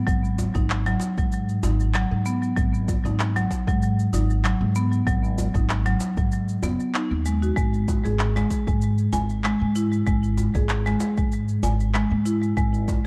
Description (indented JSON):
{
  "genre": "organic downtempo",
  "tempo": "96 BPM",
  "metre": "4/4",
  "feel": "swing 54% on 16ths",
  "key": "G# minor",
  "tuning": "A4 = 442 Hz",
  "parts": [
    { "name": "marimba with hard mallets", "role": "arpeggios", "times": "0.0-12.7 s", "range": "F#3 to G#5", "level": "-28 LUFS", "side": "equal", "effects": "delay" },
    { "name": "upright bass", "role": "bass", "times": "0.1-13.0 s", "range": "F#1 to G#2", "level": "-26 LUFS", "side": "equal", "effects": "sidechain pumping" },
    { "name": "electronic kick drum", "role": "drums", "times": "0.1-13.0 s", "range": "none", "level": "-27 LUFS", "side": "equal", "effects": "none" },
    { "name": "electronic shaker and handclaps", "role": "drums", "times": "0.1-13.0 s", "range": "none", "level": "-34 LUFS", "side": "equal", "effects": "none" },
    { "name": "djembe", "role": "percussion", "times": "0.4-13.0 s", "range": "none", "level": "-36 LUFS", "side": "equal", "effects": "none" }
  ],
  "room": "light reverb, small room ambience",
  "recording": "dark, warm production",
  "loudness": "-23 LUFS",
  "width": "mono",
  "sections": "0.0-13.1 A section",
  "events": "none",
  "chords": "0.0 G#7(no3); 7.6 N.C."
}